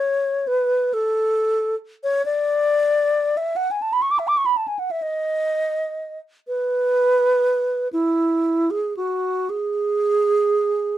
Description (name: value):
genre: classical, free, expressive piece for unaccompanied alto flute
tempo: 35-45 BPM (dotted quarters)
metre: 6/8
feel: rubato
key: unclear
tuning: A4 = 440 Hz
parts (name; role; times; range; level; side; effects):
- alto flute; solo; 0.0-11.0 s; E4 to D6; -19 LUFS; right 1 dB; none
room: light reverb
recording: dark, warm production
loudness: -19 LUFS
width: side -12 dB against mid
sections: 0.0-11.0 A section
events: none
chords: none